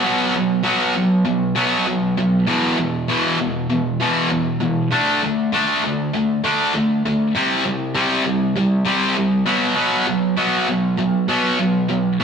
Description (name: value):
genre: rock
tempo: 99 BPM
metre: 4/4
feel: straight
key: unclear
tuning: A4 = 440 Hz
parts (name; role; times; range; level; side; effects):
- sludgy distorted guitar; solo; 0.0-12.2 s; E2 to D4; -16 LUFS; equal; overdrive
room: wet stone room reverb, RT60 1.3 s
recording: rough rehearsal-room recording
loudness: -16 LUFS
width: side -6 dB against mid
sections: 0.0-12.2 A section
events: none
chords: 0.0 B5; 2.5 E5; 4.9 D5; 7.4 C5; 9.5 B5